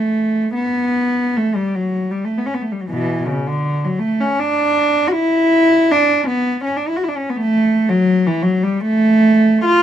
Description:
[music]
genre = classical, free, expressive piece for unaccompanied cello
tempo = 79 BPM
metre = 3/4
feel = uneven beats, rubato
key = D major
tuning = A4 = 439 Hz
[part]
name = warm cello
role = solo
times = 0.0-9.8 s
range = B2 to F#4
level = -14 LUFS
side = equal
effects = none
[sound]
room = moderate studio reverb, RT60 0.7 s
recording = dark, warm production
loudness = -14 LUFS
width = side -10 dB against mid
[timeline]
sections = 0.5-9.8 A section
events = none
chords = none

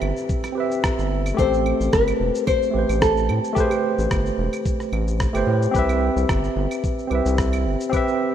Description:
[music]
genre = sunset chillout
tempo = 110 BPM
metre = 4/4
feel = swing 54% on 16ths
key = A minor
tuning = A4 = 440 Hz
[part]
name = tine electric piano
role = accompaniment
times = 0.0-8.3 s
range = A3 to E5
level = -22 LUFS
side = right 1 dB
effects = auto-pan, digital delay
[part]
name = round analog bass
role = bass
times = 0.0-7.8 s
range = E1 to A2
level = -23 LUFS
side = equal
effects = none
[part]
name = electronic claves, shaker and rim click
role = drums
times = 0.0-8.2 s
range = none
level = -32 LUFS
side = right 1 dB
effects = studio reverb
[part]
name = downlifter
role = sound effects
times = 0.0-1.4 s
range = none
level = -46 LUFS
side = right 2 dB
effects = none
[part]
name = electronic kick drum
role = drums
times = 0.3-8.0 s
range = none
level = -24 LUFS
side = equal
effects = studio reverb
[part]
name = nylon-string guitar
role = melody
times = 1.4-4.6 s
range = G4 to C5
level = -22 LUFS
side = left 2 dB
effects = digital delay
[sound]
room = moderate lush hall reverb, RT60 2.2 s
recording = rough home demo mix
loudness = -19 LUFS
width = side -10 dB against mid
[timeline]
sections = 0.0-8.3 A section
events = none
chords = 0.0 Cmaj7; 1.4 Am9; 5.7 Cmaj7

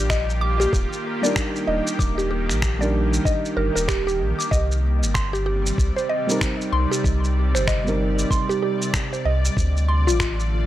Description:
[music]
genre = organic downtempo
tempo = 95 BPM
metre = 4/4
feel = swing 60% on 16ths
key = unclear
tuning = A4 = 439 Hz
[part]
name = bowed-like drone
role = sustained chords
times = 0.0-10.7 s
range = C3 to D5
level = -29 LUFS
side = equal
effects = built-in reverb, sidechain pumping
[part]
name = warm sub bass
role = bass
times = 0.0-10.7 s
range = Eb1 to D2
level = -22 LUFS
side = equal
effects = sidechain pumping
[part]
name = mallet-like synth pluck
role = arpeggios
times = 0.1-10.7 s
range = F4 to D6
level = -26 LUFS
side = right 1 dB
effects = chorus, phaser, tape echo
[part]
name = electronic finger snaps and shaker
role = drums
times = 0.1-10.5 s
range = none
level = -28 LUFS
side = equal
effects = none
[part]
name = electronic kick drum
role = drums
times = 0.1-10.4 s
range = none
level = -24 LUFS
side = equal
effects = none
[part]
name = felt-muted upright piano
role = accompaniment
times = 1.2-9.6 s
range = G3 to Bb4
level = -27 LUFS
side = right 1 dB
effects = sidechain pumping, tape echo
[sound]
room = little or no reverb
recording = dry, gritty hardware recording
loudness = -19 LUFS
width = side -13 dB against mid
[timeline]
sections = 0.0-10.7 A section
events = none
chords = 0.0 Ebmaj7; 4.5 Cm7; 9.6 Dm7

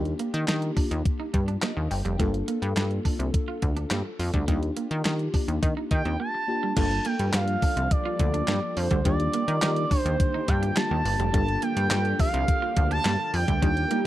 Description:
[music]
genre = early-eighties boogie funk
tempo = 105 BPM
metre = 4/4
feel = straight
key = G minor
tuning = A4 = 442 Hz
[part]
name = FM electric piano with soft pad layer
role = accompaniment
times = 0.0-14.1 s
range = Bb3 to G5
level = -33 LUFS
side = left 3 dB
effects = chorus
[part]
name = plucky analog bass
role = bass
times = 0.0-13.9 s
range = F1 to Eb3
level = -26 LUFS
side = equal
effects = none
[part]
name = clean 12-bit digital drum machine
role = drums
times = 0.1-14.0 s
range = crash cymbal, handclaps, hi-hat, kick drum, snare drum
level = -26 LUFS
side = equal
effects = none
[part]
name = electric guitar at the edge of break-up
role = riff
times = 0.2-14.0 s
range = G3 to F4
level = -34 LUFS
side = right 6 dB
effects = lush chorus
[part]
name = expressive portamento lead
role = melody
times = 5.9-14.1 s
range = C5 to A5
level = -28 LUFS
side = right 2 dB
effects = chorus
[part]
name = soft string machine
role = sustained chords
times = 7.5-14.1 s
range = D3 to G4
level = -36 LUFS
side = left 1 dB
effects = phaser, ensemble chorus
[part]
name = mellow synth brass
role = second line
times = 13.9-14.0 s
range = G3 to G4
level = -27 LUFS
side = equal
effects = chorus
[sound]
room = little or no reverb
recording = dark, warm production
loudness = -23 LUFS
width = side -14 dB against mid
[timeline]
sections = 0.0-6.8 A section; 6.8-14.1 B section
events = FM electric piano fill 1.3-2.2; break 6.2-6.8; band accent 13.6-14.1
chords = 0.0 Ebmaj7; 2.2 Gm7; 4.5 Ebmaj7; 6.8 Gm7; 9.1 Ebmaj7; 11.3 Gm7

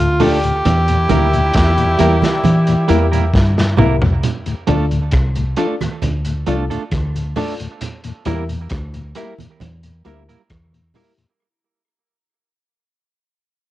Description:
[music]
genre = roots reggae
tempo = 67 BPM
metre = 4/4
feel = straight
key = unclear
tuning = A4 = 440 Hz
[part]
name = clear tenor saxophone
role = melody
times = 0.0-3.3 s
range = F4 to G4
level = -19 LUFS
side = equal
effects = cassette tape, dub echo
[part]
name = mellow horn section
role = second line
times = 0.0-3.7 s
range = Bb2 to F4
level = -27 LUFS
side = equal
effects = cassette tape, dub echo
[part]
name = mellow tonewheel organ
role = accompaniment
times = 0.0-11.3 s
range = D2 to E4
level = -23 LUFS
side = left 4 dB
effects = slow rotary speaker, cassette tape
[part]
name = deep dub fingered electric bass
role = bass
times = 0.0-10.9 s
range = C2 to E3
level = -17 LUFS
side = equal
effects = tube saturation
[part]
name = crunchy breakbeat drum kit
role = drums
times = 0.0-11.4 s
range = hi-hat, kick drum, rim click, snare drum, toms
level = -21 LUFS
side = equal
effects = cassette tape, tape echo
[part]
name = semi-hollow electric guitar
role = accompaniment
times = 0.2-11.1 s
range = G3 to Bb4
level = -23 LUFS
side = right 6 dB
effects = cassette tape, dub echo
[part]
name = dark upright piano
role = stabs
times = 0.2-11.1 s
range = D4 to E5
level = -24 LUFS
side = left 6 dB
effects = cassette tape
[part]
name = congas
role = percussion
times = 0.2-11.2 s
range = none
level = -22 LUFS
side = right 5 dB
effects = none
[sound]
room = light reverb, small room ambience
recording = home recording on cassette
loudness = -14 LUFS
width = side -15 dB against mid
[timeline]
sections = 0.0-4.2 A section; 4.2-11.4 B section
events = drum fill 3.3-4.2; fade-out 4.2-11.4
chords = 0.0 Dm; 0.7 Edim; 4.2 Dm; 7.8 Edim

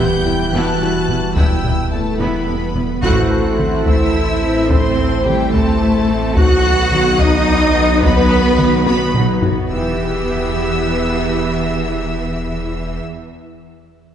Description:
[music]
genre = cinematic, hybrid orchestral and electronic film score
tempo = 72 BPM (dotted quarters)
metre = 6/8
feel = straight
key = E harmonic minor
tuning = A4 = 439 Hz
[part]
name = warm symphonic violin section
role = melody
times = 0.0-13.0 s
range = G5 to G6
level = -25 LUFS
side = left 2 dB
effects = none
[part]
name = warm symphonic violin section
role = second line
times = 0.0-13.0 s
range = G4 to A5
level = -24 LUFS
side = left 2 dB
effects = none
[part]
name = bright symphonic viola section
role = accompaniment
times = 0.0-13.0 s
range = F#3 to A4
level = -25 LUFS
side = right 1 dB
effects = none
[part]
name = chorused pulse-width pad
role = sustained chords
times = 0.0-13.0 s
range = D#3 to C5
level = -22 LUFS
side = right 1 dB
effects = none
[part]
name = warm French horn section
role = sustained chords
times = 0.0-13.0 s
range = G3 to G4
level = -24 LUFS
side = left 1 dB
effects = none
[part]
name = harp-like synth pluck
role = arpeggios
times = 0.0-9.6 s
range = E3 to B4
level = -25 LUFS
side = left 1 dB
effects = chorus, tape echo
[part]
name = rich symphonic cello section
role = bass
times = 0.0-13.0 s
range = E2 to F#4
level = -21 LUFS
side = right 2 dB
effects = none
[part]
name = rich symphonic double bass section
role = bass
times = 0.0-13.0 s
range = E1 to E2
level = -23 LUFS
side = right 2 dB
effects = none
[part]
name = saturated sub bass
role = bass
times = 0.0-13.0 s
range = E1 to B1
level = -25 LUFS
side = equal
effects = none
[part]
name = taiko ensemble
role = drums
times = 1.1-9.7 s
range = none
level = -19 LUFS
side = left 1 dB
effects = none
[sound]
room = wet concert hall reverb, RT60 2.4 s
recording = heard from further back in the room, nothing above 10.6 kHz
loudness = -13 LUFS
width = side -9 dB against mid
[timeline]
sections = 0.0-3.0 A section; 3.0-9.7 B section; 9.7-13.0 C section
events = band accent 3.0-3.6; drum fill 8.9-9.7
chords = 0.0 Em; 3.0 Am; 6.4 B; 9.7 Em

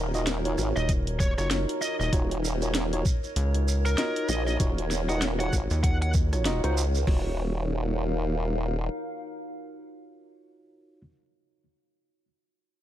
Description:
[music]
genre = glitch hop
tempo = 97 BPM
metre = 4/4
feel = swing 59% on 16ths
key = Eb minor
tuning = A4 = 441 Hz
[part]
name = formant-sweep wobble bass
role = bass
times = 0.0-8.9 s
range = Eb1 to Db2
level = -28 LUFS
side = equal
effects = chorus
[part]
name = warbly tape-like pad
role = texture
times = 0.0-10.3 s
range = Eb4 to F5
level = -35 LUFS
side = equal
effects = chorus, built-in reverb, sidechain pumping
[part]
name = mellow tine electric piano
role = stabs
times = 0.1-11.0 s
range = Eb4 to Eb5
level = -34 LUFS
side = equal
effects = vintage 12-bit sampler grit, sidechain pumping, digital delay
[part]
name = drum and bass drum kit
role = drums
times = 0.1-6.7 s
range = hi-hat, rim click, snare drum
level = -31 LUFS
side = equal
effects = none
[part]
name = shekere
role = percussion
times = 0.1-7.0 s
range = none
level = -37 LUFS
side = right 6 dB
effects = none
[part]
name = bluesy overdriven lead guitar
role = melody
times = 0.8-6.1 s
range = Bb4 to Gb5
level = -35 LUFS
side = equal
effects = distortion, digital delay
[part]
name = rubbery square bass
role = bass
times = 0.8-6.6 s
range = Eb1 to Eb2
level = -26 LUFS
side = equal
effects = none
[part]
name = boom bap sampler-style drum kit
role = drums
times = 0.9-7.2 s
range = hi-hat, kick drum, toms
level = -25 LUFS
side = equal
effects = none
[sound]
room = digital ambience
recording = none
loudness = -24 LUFS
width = side -12 dB against mid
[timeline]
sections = 0.0-7.1 A section; 7.1-9.5 B section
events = drop 0.0-7.1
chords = 0.0 Ebm9

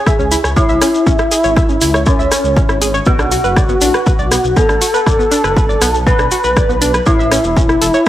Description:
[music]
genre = melodic techno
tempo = 120 BPM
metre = 4/4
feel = straight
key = unclear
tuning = A4 = 440 Hz
[part]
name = expressive synth lead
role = melody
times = 0.0-8.1 s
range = C#4 to B4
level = -16 LUFS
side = equal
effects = ensemble chorus, sidechain pumping, tape echo
[part]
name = dark detuned synth bell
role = second line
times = 0.0-8.1 s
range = C#4 to B4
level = -21 LUFS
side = left 1 dB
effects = chorus, sidechain pumping, analog delay
[part]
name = warbly dusty pluck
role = arpeggios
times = 0.1-8.1 s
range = B3 to E6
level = -19 LUFS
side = equal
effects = chorus, sidechain pumping, analog delay
[part]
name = electronic kick drum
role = drums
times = 0.1-8.1 s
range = none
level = -14 LUFS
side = equal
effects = none
[part]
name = techno drum kit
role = drums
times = 0.1-8.1 s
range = hi-hat, rim click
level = -20 LUFS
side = equal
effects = none
[part]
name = shekere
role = percussion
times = 0.1-8.1 s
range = none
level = -23 LUFS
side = left 2 dB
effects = none
[part]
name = dark detuned saw bass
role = bass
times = 0.2-7.9 s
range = E1 to C#2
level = -20 LUFS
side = equal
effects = sidechain pumping
[sound]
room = light reverb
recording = dry, gritty hardware recording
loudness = -10 LUFS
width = side -13 dB against mid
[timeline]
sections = 0.0-8.1 A section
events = none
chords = 0.0 C#m; 3.1 Bm; 7.1 A

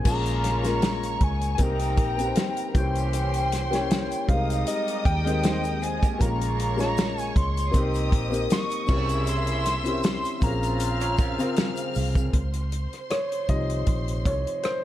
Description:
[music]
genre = lush 1970s-style soul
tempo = 78 BPM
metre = 4/4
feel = swing 54% on 16ths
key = Bb dorian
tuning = A4 = 440 Hz
[part]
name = hollow square lead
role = melody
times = 0.0-11.9 s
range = Eb5 to Db6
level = -30 LUFS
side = equal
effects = chorus
[part]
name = warm grand piano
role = accompaniment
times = 0.0-14.8 s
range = C3 to Eb5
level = -29 LUFS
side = left 3 dB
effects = none
[part]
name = warm studio string section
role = second line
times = 0.1-14.8 s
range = Bb4 to F6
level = -36 LUFS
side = equal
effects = slapback echo
[part]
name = clear horn section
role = stabs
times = 0.1-11.9 s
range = C3 to Bb4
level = -36 LUFS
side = right 2 dB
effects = slapback echo
[part]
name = vintage muted fingered electric bass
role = bass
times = 0.1-14.4 s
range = Bb1 to Eb2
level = -27 LUFS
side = equal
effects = none
[part]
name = warm soul drum kit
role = drums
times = 0.1-14.8 s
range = crash cymbal, hi-hat, kick drum, rim click, snare drum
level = -26 LUFS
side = equal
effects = none
[part]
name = tube shaker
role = percussion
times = 0.1-12.3 s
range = none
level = -46 LUFS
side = left 8 dB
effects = none
[part]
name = electric guitar through a small old amp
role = riff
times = 5.3-12.3 s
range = Bb3 to Eb5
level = -35 LUFS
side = right 7 dB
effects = harmonic tremolo
[sound]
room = light reverb, small room reverb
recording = dark, warm production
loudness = -22 LUFS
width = side -13 dB against mid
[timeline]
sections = 0.1-12.3 A section; 12.3-14.8 B section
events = grand piano solo 12.3-14.8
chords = 0.1 Bbm7; 1.6 Cm7; 2.8 C7b9; 4.3 Abmaj9/C; 6.2 Bbm7; 7.7 Cm7; 8.9 C7b9; 10.4 Bbm9; 12.3 Dbmaj9

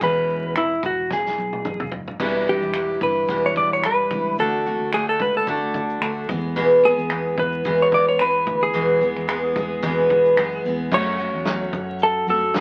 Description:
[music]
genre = acoustic pop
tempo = 110 BPM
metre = 4/4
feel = swing 55% on 16ths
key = unclear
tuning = A4 = 440 Hz
[part]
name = clean lap steel guitar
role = melody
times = 0.0-12.6 s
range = E4 to D5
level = -24 LUFS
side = equal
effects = none
[part]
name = picked steel-string acoustic guitar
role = accompaniment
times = 0.0-12.6 s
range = E2 to G#4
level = -24 LUFS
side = equal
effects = none
[part]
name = vintage muted fingered electric bass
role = bass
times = 0.0-12.6 s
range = E1 to F#2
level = -35 LUFS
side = equal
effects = none
[part]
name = loose indie drum kit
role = drums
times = 0.0-12.6 s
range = crash cymbal, finger snaps, kick drum, shaker, snare drum, toms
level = -32 LUFS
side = equal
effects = none
[sound]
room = moderate club reverb, RT60 0.5 s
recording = very old 78 rpm record, vinyl crackle, faint mains hum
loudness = -21 LUFS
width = mono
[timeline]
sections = 0.0-2.2 A section; 2.2-10.9 B section; 10.9-12.6 C section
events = drum fill 1.1-2.2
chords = 0.0 E6; 2.2 Em7; 4.4 D; 6.3 E; 10.9 F#m

